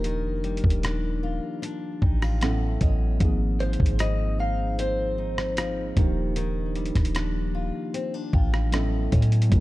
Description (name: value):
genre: contemporary R&B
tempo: 76 BPM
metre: 4/4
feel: straight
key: unclear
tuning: A4 = 440 Hz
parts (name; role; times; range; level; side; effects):
- direct-recorded clean electric guitar; melody; 0.0-8.7 s; Bb4 to F5; -32 LUFS; equal; lush chorus, digital delay
- muted felt-like synth keys; accompaniment; 0.0-9.6 s; F3 to G5; -31 LUFS; right 1 dB; chorus
- picked steel-string acoustic guitar; arpeggios; 0.0-9.6 s; Ab2 to F4; -34 LUFS; left 5 dB; none
- warm 808-style bass; bass; 0.0-9.6 s; Eb1 to A2; -25 LUFS; equal; none
- dusty soul sampler-style drum kit; drums; 0.0-9.6 s; hi-hat, kick drum, rim click; -25 LUFS; equal; none
room: little or no reverb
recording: dark, warm production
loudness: -22 LUFS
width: side -18 dB against mid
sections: 0.0-9.5 A section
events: synth keys fill 1.6-3.2, 7.9-9.5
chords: 0.0 Ebmaj9; 2.4 A6; 3.2 Ab6; 6.0 Ebmaj9; 8.7 A6